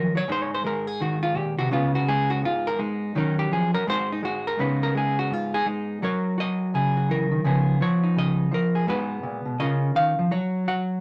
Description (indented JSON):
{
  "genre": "solo jazz",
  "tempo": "168 BPM",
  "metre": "4/4",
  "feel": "swing 63% on 8ths",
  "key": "Db mixolydian",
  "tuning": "A4 = 440 Hz",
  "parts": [
    { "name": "hollow-body jazz guitar", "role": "solo", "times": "0.0-11.0 s", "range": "Ab2 to Gb5", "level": "-24 LUFS", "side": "equal", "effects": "none" }
  ],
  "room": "wet studio reverb, RT60 0.5 s",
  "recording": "none",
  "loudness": "-24 LUFS",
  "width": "mono",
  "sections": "0.0-4.6 A section; 4.6-11.0 A section",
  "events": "hollow-body jazz guitar solo 0.0-11.0",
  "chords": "0.3 Abadd9; 1.7 Dbsus2; 3.1 Ebm7; 3.9 Ab7; 4.6 Dbsus2; 6.0 Gb13; 7.4 Db13; 8.9 Abm7; 9.6 Db69; 10.3 Gb5",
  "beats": "| 0.28 0.64 1.00 1.36 | 1.71 2.07 2.43 2.79 | 3.14 3.50 3.86 4.22 | 4.58 4.93 5.29 5.65 | 6.00 6.36 6.72 7.08 | 7.44 7.79 8.15 8.51 | 8.87 9.22 9.58 9.94 | 10.29 10.65"
}